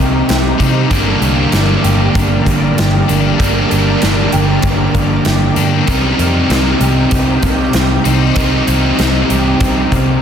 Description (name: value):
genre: rock, shoegaze and dream pop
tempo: 96 BPM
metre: 4/4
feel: straight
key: G minor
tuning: A4 = 439 Hz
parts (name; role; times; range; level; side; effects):
- shimmering ambient pad; sustained chords; 0.0-10.2 s; G4 to Bb5; -24 LUFS; equal; chorus, built-in reverb
- fingerpicked twelve-string acoustic guitar; arpeggios; 0.0-10.2 s; Bb3 to G4; -24 LUFS; left 2 dB; ensemble chorus, slapback echo
- biting overdriven guitar; riff; 0.0-10.2 s; G2 to Eb4; -16 LUFS; right 9 dB; reverse reverb
- overdriven electric guitar; riff; 0.0-10.2 s; G2 to Eb4; -17 LUFS; left 9 dB; analog chorus
- vintage muted picked electric bass; bass; 0.0-10.2 s; G1 to C3; -16 LUFS; equal; none
- big rock drum kit; drums; 0.3-10.1 s; hi-hat, kick drum, snare drum; -18 LUFS; equal; none
room: light reverb, studio reverb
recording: dense, heavily limited modern master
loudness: -10 LUFS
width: side -8 dB against mid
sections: 0.0-10.2 A section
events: none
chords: 0.0 Cm7; 0.9 Gm; 5.9 Cm7